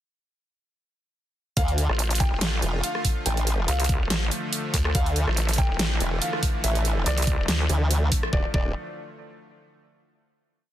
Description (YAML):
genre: heavy wobble dubstep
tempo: 142 BPM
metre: 4/4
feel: swing 55% on 16ths, half-time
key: D minor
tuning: A4 = 444 Hz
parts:
  - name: felt-muted upright piano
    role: melody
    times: 1.6-8.7 s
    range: D5 to G5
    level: -33 LUFS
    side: equal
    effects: ping-pong delay
  - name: supersaw pad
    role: sustained chords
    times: 1.6-8.5 s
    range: D3 to F4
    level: -33 LUFS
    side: equal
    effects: sidechain pumping
  - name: formant-sweep wobble bass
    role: bass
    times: 1.6-8.7 s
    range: D1 to D2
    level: -24 LUFS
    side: equal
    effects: chorus, overdrive
  - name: dubstep drum kit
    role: drums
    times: 1.6-8.3 s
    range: hi-hat, rim click, snare drum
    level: -28 LUFS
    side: right 1 dB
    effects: overdrive
  - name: electronic kick drum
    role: drums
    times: 1.6-8.6 s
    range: none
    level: -24 LUFS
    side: equal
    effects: overdrive
  - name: vowel-sweep wobble bass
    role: bass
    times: 1.9-7.7 s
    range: E1 to D2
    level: -25 LUFS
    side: equal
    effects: chorus, overdrive
room: digital ambience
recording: dense, heavily limited modern master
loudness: -22 LUFS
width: side -12 dB against mid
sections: 1.6-8.3 drop; 8.3-10.0 final chord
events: drop 1.6-8.3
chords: 1.6 Dm